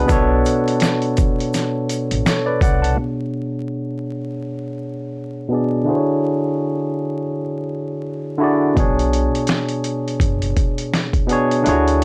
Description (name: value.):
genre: lo-fi hip hop.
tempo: 83 BPM.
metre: 4/4.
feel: swing 56% on 16ths.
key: B dorian.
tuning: A4 = 440 Hz.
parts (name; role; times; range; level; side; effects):
barky tine electric piano; accompaniment; 0.0-12.0 s; B2 to A5; -21 LUFS; equal; low-pass filter.
upright bass; bass; 0.0-2.9, 8.8-12.0 s; F#1 to D2; -23 LUFS; equal; none.
dusty soul sampler-style drum kit; drums; 0.1-3.0, 8.8-12.0 s; hi-hat, kick drum, snare drum; -22 LUFS; equal; overdrive.
egg shaker; percussion; 0.1-2.8 s; none; -42 LUFS; equal; none.
room: light reverb.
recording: dry, gritty hardware recording, vinyl crackle.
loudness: -20 LUFS.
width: mono.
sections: 0.0-3.0 A section; 3.0-12.0 B section.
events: filter sweep on tine electric piano 3.0-12.0.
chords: 0.1 Bm9; 3.0 Bm69; 5.9 Dmaj9#11; 8.8 Bm69.